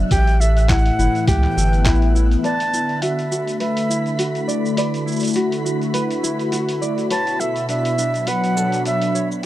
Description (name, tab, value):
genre	folktronica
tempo	103 BPM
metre	4/4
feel	swing 56% on 16ths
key	D major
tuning	A4 = 441 Hz
part	warm analog pad	sustained chords	0.0-9.5 s	A2 to F#4	-22 LUFS	left 1 dB	chorus
part	tenor ukulele	arpeggios	0.0-9.5 s	D4 to D5	-25 LUFS	right 1 dB	low-pass filter, tape echo
part	warm sub bass	bass	0.0-2.4 s	G1 to C#2	-16 LUFS	equal	none
part	flickering grainy texture	texture	0.0-9.5 s	E5 to B6	-33 LUFS	left 1 dB	built-in reverb
part	breathy bright concert flute	melody	0.1-9.5 s	E5 to A5	-23 LUFS	right 1 dB	tape echo
part	electronic kick drum	drums	0.1-2.0 s	none	-19 LUFS	equal	none
part	lo-fi sampler-style drum kit	drums	0.1-9.5 s	handclaps, hi-hat, shaker	-28 LUFS	right 1 dB	none
room	light reverb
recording	dry, close 1970s-style studio recording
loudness	-17 LUFS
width	side -14 dB against mid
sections	0.0-2.4 A section; 2.4-9.5 B section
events	filter sweep on ukulele 2.4-9.5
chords	0.1 A7(no3); 2.4 D69; 7.1 Bm9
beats	| 0.11 0.69 1.28 1.86 | 2.44 3.03 3.61 4.19 | 4.77 5.36 5.94 6.52 | 7.10 7.69 8.27 8.85 | 9.43